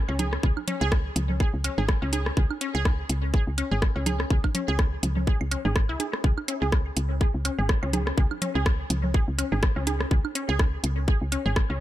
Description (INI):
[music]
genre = minimal techno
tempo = 124 BPM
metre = 4/4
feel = swing 56% on 16ths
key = unclear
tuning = A4 = 437 Hz
[part]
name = resonant blip pluck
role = riff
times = 0.1-11.8 s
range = C#4 to G#4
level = -32 LUFS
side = left 1 dB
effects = chorus, sidechain pumping, analog delay
[part]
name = woody FM bass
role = bass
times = 0.1-11.8 s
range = G#1 to C#2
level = -27 LUFS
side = equal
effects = sidechain pumping
[part]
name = woodblock, bongos and congas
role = percussion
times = 0.1-11.4 s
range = none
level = -33 LUFS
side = right 3 dB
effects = overdrive, dub echo
[part]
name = garage drum kit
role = drums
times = 0.2-11.7 s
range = hi-hat, rim click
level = -31 LUFS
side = equal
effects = tape echo
[part]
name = electronic kick drum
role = drums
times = 0.4-11.7 s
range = none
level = -23 LUFS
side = equal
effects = none
[sound]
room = digital ambience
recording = echo-heavy mix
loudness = -23 LUFS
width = side -14 dB against mid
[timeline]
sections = 0.0-11.8 A section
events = none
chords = 0.0 C#5